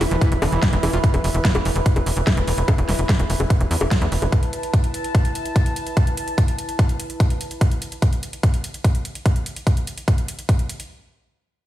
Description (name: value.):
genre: psychedelic trance.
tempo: 146 BPM.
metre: 4/4.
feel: straight.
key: unclear.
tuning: A4 = 441 Hz.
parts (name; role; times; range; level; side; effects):
swarming drone; sustained chords; 0.0-1.1 s; E3; -32 LUFS; right 1 dB; none.
screaming distorted acid line; riff; 0.0-1.0 s; D3 to F4; -29 LUFS; right 1 dB; distortion, chorus, auto-pan, cassette tape, sidechain pumping, dub echo.
tight sequencer bass; bass; 0.0-4.3 s; E1 to E2; -21 LUFS; equal; none.
big-room dance drum kit; drums; 0.0-10.9 s; bongos, hi-hat, snare drum; -28 LUFS; left 1 dB; overdrive.
warbly tape-like pad; texture; 0.0-7.6 s; E4 to B5; -28 LUFS; right 1 dB; chorus, built-in reverb, sidechain pumping.
electronic kick drum; drums; 0.2-10.6 s; none; -18 LUFS; equal; overdrive.
room: light reverb, digital ambience.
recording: played on a big sound system in a bare room, stone room reverb.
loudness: -18 LUFS.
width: side -13 dB against mid.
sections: 0.0-10.9 A section.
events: filter sweep on synth drone 0.0-1.0.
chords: 0.0 E5.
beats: 0.21 0.63 | 1.04 1.45 1.86 2.27 | 2.68 3.09 3.50 3.91 | 4.32 4.74 5.15 5.56 | 5.97 6.38 6.79 7.20 | 7.61 8.02 8.43 8.85 | 9.26 9.67 10.08 10.49.